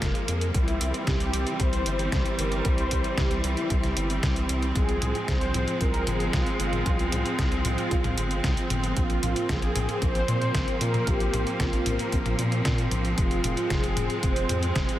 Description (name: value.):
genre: italo disco.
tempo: 114 BPM.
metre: 4/4.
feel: straight.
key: F harmonic minor.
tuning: A4 = 440 Hz.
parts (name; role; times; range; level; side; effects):
mellow synth brass; melody; 0.0-15.0 s; E4 to C5; -32 LUFS; equal; chorus, diffuse ambient delay.
rich studio string section; sustained chords; 0.0-15.0 s; E3 to C4; -29 LUFS; right 1 dB; none.
round analog bass; bass; 0.0-14.9 s; F1 to Bb2; -29 LUFS; equal; none.
detuned 8-bit digital drum machine; drums; 0.0-15.0 s; hi-hat, snare drum, toms; -31 LUFS; left 1 dB; none.
electronic kick drum; drums; 0.0-14.9 s; none; -28 LUFS; equal; none.
room: moderate huge ambient reverb, RT60 7.8 s.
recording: dreamy mix soaked in reverb.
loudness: -23 LUFS.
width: side -13 dB against mid.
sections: 0.0-15.0 A section.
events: none.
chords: 0.0 Fm; 0.5 C; 4.8 Fm; 9.0 Bbsus2; 13.2 Fm.